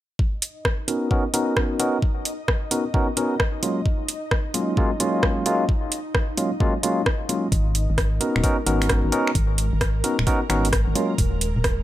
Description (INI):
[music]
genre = UK garage, two-step garage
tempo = 131 BPM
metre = 4/4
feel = swing 66% on 16ths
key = unclear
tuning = A4 = 440 Hz
[part]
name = ethereal airy pad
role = sustained chords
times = 0.6-11.8 s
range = G#3 to D#5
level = -33 LUFS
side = right 1 dB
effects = ensemble chorus, built-in reverb, sidechain pumping
[part]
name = electronic kick drum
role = drums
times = 0.2-11.8 s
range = none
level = -23 LUFS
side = equal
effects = overdrive
[part]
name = garage drum kit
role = drums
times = 0.4-11.8 s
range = finger snaps, hi-hat, rim click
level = -25 LUFS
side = right 1 dB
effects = overdrive
[part]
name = barky tine electric piano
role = stabs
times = 0.9-11.1 s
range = F#3 to A#4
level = -23 LUFS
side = equal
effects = medium stereo tremolo, low-pass filter, ping-pong delay
[part]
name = organ-like FM bass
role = bass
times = 7.5-11.8 s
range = D#1 to G#1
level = -23 LUFS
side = equal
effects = none
[sound]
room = light reverb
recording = none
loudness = -20 LUFS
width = side -14 dB against mid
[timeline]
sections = 0.2-11.8 A section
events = filter sweep on ambient pad 0.2-11.8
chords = 0.2 Bmaj9; 3.6 D#m11; 7.5 G#m11; 11.0 D#m11